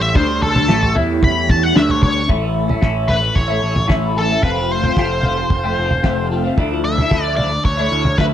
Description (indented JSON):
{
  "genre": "psychedelic rock",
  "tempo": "112 BPM",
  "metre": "4/4",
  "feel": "straight",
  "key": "unclear",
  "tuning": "A4 = 440 Hz",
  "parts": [
    { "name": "octave-fuzz lead guitar", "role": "melody", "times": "0.0-8.2 s", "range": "A4 to B5", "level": "-19 LUFS", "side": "left 1 dB", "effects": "wah, distortion, slapback echo" },
    { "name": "tonewheel organ", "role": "sustained chords", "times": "0.0-8.3 s", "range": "G3 to F5", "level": "-29 LUFS", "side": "right 8 dB", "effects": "slow rotary speaker, chorus vibrato" },
    { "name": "twelve-string electric guitar", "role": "riff", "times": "0.0-8.3 s", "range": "F2 to F4", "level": "-19 LUFS", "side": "left 1 dB", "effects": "phaser" },
    { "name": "growling picked electric bass", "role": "bass", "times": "0.0-8.3 s", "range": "F1 to E2", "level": "-22 LUFS", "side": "equal", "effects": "overdrive" },
    { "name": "cloth-damped thuddy drum kit", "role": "drums", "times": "0.2-8.3 s", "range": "kick drum, snare drum, toms", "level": "-17 LUFS", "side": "equal", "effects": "none" }
  ],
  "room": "studio ambience",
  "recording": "none",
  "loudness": "-14 LUFS",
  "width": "side -10 dB against mid",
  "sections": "0.0-2.3 A section; 2.3-8.3 B section",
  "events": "lead electric guitar solo 0.0-2.3",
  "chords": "0.0 A7; 2.3 A; 4.4 F; 6.6 Dmadd9"
}